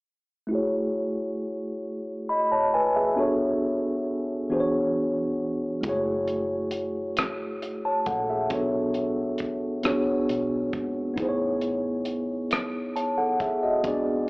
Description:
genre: slow six-eight R&B.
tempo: 45 BPM (dotted quarters).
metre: 6/8.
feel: straight.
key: F# minor.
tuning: A4 = 440 Hz.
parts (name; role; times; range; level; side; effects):
mellow tine electric piano; accompaniment; 0.5-14.3 s; E3 to B5; -24 LUFS; equal; medium stereo tremolo, low-pass filter, slapback echo.
vintage muted fingered electric bass; bass; 5.8-14.3 s; F#1 to E2; -43 LUFS; equal; none.
cloth-damped thuddy drum kit; drums; 5.8-14.0 s; hi-hat, kick drum, rim click; -31 LUFS; equal; slapback echo.
room: light reverb.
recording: live gig heard through the venue's PA, club reverb, AM radio sound.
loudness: -24 LUFS.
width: side -24 dB against mid.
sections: 0.5-5.8 A section; 5.8-14.3 B section.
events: none.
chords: 0.5 F#m9; 3.2 Bm7; 4.5 E13; 5.8 F#m9; 8.5 Bm7; 9.8 E13; 11.2 Amaj9#11.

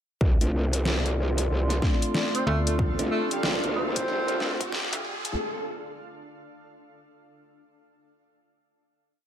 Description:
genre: glitch hop.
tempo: 93 BPM.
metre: 4/4.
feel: swing 63% on 16ths.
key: D minor.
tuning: A4 = 440 Hz.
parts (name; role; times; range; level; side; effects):
warbly tape-like pad; sustained chords; 0.8-5.3 s; F4 to C6; -35 LUFS; right 1 dB; chorus, built-in reverb, sidechain pumping.
growl bass; bass; 0.2-4.6 s; C2 to D2; -26 LUFS; equal; chorus, overdrive.
electronic kick drum; drums; 0.2-4.7 s; none; -24 LUFS; equal; none.
riser; sound effects; 1.8-5.4 s; none; -35 LUFS; right 1 dB; none.
granular cloud pad; texture; 1.8-5.4 s; D4 to F5; -37 LUFS; left 1 dB; built-in reverb, sidechain pumping.
bell-like tine electric piano; stabs; 0.4-5.4 s; A3 to F4; -33 LUFS; left 1 dB; vintage 12-bit sampler grit, sidechain pumping, digital delay.
dubstep drum kit; drums; 0.4-5.3 s; hi-hat, snare drum; -30 LUFS; equal; none.
mellow tenor saxophone; melody; 2.3-4.7 s; G3 to C4; -31 LUFS; right 1 dB; digital delay.
slap-like FM bass; bass; 2.5-5.4 s; D2; -27 LUFS; equal; tube saturation.
room: light reverb.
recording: high-pass filter.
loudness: -24 LUFS.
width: side -10 dB against mid.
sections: 0.2-5.4 build.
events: build-up 0.2-5.4; filter sweep 0.2-5.4; riser 1.8-5.4.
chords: 0.2 Dm7.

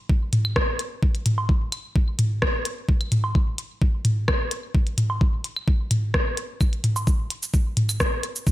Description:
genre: techno.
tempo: 129 BPM.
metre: 4/4.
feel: straight.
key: none.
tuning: none.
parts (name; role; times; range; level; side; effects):
electronic kick drum; drums; 0.1-8.5 s; none; -20 LUFS; equal; overdrive, studio reverb.
minimal click drum kit; drums; 0.3-8.5 s; hi-hat, rim click, shaker; -27 LUFS; equal; studio reverb, gated reverb.
electronic toms, claves and woodblock; percussion; 0.3-8.0 s; none; -24 LUFS; equal; studio reverb.
room: light reverb.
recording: bright 1980s-style digital production.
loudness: -21 LUFS.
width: side -16 dB against mid.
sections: 0.0-8.5 A section.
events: none.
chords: none.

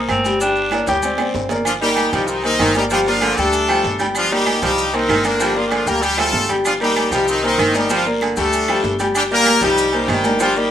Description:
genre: latin, salsa.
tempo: 192 BPM.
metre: 4/4.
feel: straight.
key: G minor.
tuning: A4 = 440 Hz.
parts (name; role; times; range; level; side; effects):
clear baby grand piano; accompaniment; 0.0-10.7 s; G3 to G5; -20 LUFS; left 2 dB; none.
upright bass; bass; 0.0-10.7 s; G1 to D2; -29 LUFS; equal; none.
raspy tenor saxophone; melody; 0.1-1.3 s; C4 to G4; -20 LUFS; equal; none.
claves; percussion; 0.1-10.2 s; none; -30 LUFS; right 5 dB; none.
congas; percussion; 0.1-10.7 s; none; -31 LUFS; equal; none.
guiro; percussion; 0.1-10.7 s; none; -33 LUFS; left 6 dB; none.
maracas; percussion; 0.1-10.7 s; none; -31 LUFS; left 4 dB; none.
timbales and agogo bells; percussion; 0.1-10.6 s; none; -26 LUFS; right 7 dB; none.
brilliant horn section; melody; 1.7-10.7 s; D3 to Bb4; -18 LUFS; left 1 dB; none.
clear baritone saxophone; second line; 1.8-10.6 s; D3 to G3; -24 LUFS; right 4 dB; none.
room: moderate studio reverb, RT60 0.6 s.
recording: rough home demo mix.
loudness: -15 LUFS.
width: side -10 dB against mid.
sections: 0.0-1.7 A section; 1.7-10.7 B section.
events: drum fill 0.7-1.7, 6.2-6.7.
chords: 0.4 Gm; 1.0 D7sus4; 3.5 Dsus4; 4.2 Gm7; 6.0 Dsus4; 6.7 Gm7; 8.5 Dsus4; 9.1 Gm7.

